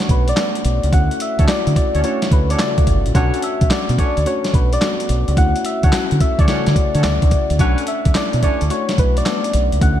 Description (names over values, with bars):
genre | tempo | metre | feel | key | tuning
R&B, new jack swing | 108 BPM | 4/4 | swing 67% on 16ths | B minor | A4 = 440 Hz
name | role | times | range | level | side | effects
soft struck synth lead | melody | 0.0-10.0 s | B4 to F#5 | -22 LUFS | left 2 dB | chorus
soft electric-piano-like synth keys | accompaniment | 0.0-10.0 s | C#3 to F#4 | -23 LUFS | left 2 dB | chorus, phaser
dusty soul sampler-style drum kit | drums | 0.0-10.0 s | handclaps, hi-hat, kick drum, snare drum | -18 LUFS | equal | none
deep dub fingered electric bass | bass | 0.1-10.0 s | G1 to D3 | -18 LUFS | equal | tube saturation
warm horn section | stabs | 1.4-8.6 s | C#4 to C#5 | -29 LUFS | right 2 dB | none
room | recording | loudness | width
light reverb | bright 1980s-style digital production | -14 LUFS | side -11 dB against mid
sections
0.0-10.0 A section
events
none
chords
0.0 Bm9; 0.9 Dmaj7; 3.1 Bm9; 5.4 Dmaj7; 7.6 Bm9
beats
0.37 | 0.93 1.48 2.04 2.59 | 3.15 3.70 4.26 4.82 | 5.37 5.93 6.48 7.04 | 7.59 8.15 8.70 9.26 | 9.81